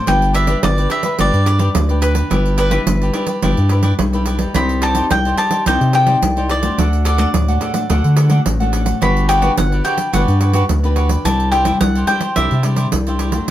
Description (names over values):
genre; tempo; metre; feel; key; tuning
samba and choro; 107 BPM; 4/4; straight; G major; A4 = 440 Hz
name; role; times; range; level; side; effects
cavaquinho; accompaniment; 0.0-13.5 s; D4 to F#5; -24 LUFS; right 3 dB; none
nylon-string guitar; accompaniment; 0.0-13.5 s; A2 to D5; -22 LUFS; left 3 dB; none
cavaquinho; melody; 0.1-12.6 s; B4 to B5; -18 LUFS; left 1 dB; none
round analog bass; bass; 0.1-13.4 s; G1 to D3; -16 LUFS; equal; none
pandeiro; percussion; 0.1-13.5 s; none; -22 LUFS; right 5 dB; none
room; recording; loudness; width
moderate studio ambience, RT60 0.5 s; band playing live in one room; -13 LUFS; side -13 dB against mid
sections
0.1-13.5 A section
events
none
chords
0.1 G; 2.3 Em7/G; 4.5 Cmadd9; 6.8 D; 9.0 Gmaj7; 11.2 Cadd9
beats
| 0.07 0.63 1.19 1.75 | 2.31 2.87 3.43 3.99 | 4.55 5.11 5.66 6.22 | 6.78 7.34 7.90 8.46 | 9.02 9.57 10.13 10.69 | 11.25 11.81 12.37 12.92 | 13.48